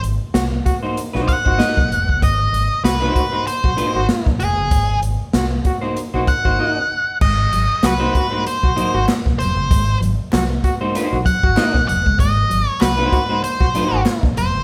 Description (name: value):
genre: funk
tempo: 96 BPM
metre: 4/4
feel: swing 56% on 16ths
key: Ab mixolydian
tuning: A4 = 438 Hz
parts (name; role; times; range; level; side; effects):
- vintage muted fingered electric bass; bass; 0.0-14.6 s; F1 to C2; -24 LUFS; equal; none
- swinging big-band drum kit; drums; 0.0-14.5 s; crash cymbal, hi-hat, kick drum, snare drum; -22 LUFS; equal; none
- brilliant trombone; second line; 0.3-14.3 s; Gb4; -28 LUFS; equal; none
- clean electric guitar; accompaniment; 0.8-14.0 s; Bb3 to Eb5; -25 LUFS; equal; none
- octave-fuzz lead guitar; melody; 1.3-14.6 s; Ab4 to Gb5; -22 LUFS; equal; distortion
- clean electric guitar; riff; 7.2-14.5 s; Gb3 to Ab3; -30 LUFS; equal; spring reverb
- group handclap; percussion; 7.8-14.2 s; none; -37 LUFS; equal; none
room: light reverb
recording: band playing live in one room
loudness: -18 LUFS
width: mono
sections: 0.0-7.2 A section; 7.2-14.6 B section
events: none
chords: 0.0 Ab9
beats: 0.35 0.98 1.60 | 2.23 2.85 3.47 4.10 | 4.72 5.34 5.97 6.59 | 7.21 7.84 8.46 9.08 | 9.70 10.33 10.95 11.57 | 12.19 12.81 13.44 14.06